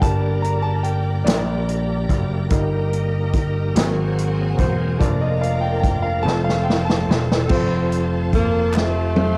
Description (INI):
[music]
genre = slow gospel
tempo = 48 BPM (dotted quarters)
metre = 6/8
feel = straight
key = unclear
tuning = A4 = 435 Hz
[part]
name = clear grand piano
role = accompaniment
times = 0.0-9.4 s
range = F3 to Bb5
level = -28 LUFS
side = equal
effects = none
[part]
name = bright tonewheel organ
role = sustained chords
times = 0.0-9.4 s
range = F3 to F5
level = -31 LUFS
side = equal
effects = slow rotary speaker, chorus vibrato
[part]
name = clear studio string section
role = sustained chords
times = 0.0-9.4 s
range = A4 to Bb5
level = -37 LUFS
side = equal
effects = none
[part]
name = vintage slap bass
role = bass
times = 0.0-9.4 s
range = E1 to Bb1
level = -24 LUFS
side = equal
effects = transformer saturation
[part]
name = swinging big-band drum kit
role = drums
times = 0.0-9.4 s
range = crash cymbal, hi-hat, kick drum, snare drum, toms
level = -23 LUFS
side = equal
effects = none
[part]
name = mellow saxophone section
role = melody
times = 8.4-9.4 s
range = C3 to Bb3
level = -23 LUFS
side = equal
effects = cassette tape
[part]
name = group handclap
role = percussion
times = 8.7-9.1 s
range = none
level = -35 LUFS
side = equal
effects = none
[sound]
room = light reverb, studio reverb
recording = home recording on cassette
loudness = -20 LUFS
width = mono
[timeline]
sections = 0.0-7.5 A section; 7.5-9.4 B section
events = grand piano solo 0.0-7.5; drum fill 6.3-7.5, 8.7-9.4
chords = 0.0 Gm; 2.5 Eb/G; 3.8 Ab9; 5.0 Bb/F; 6.3 F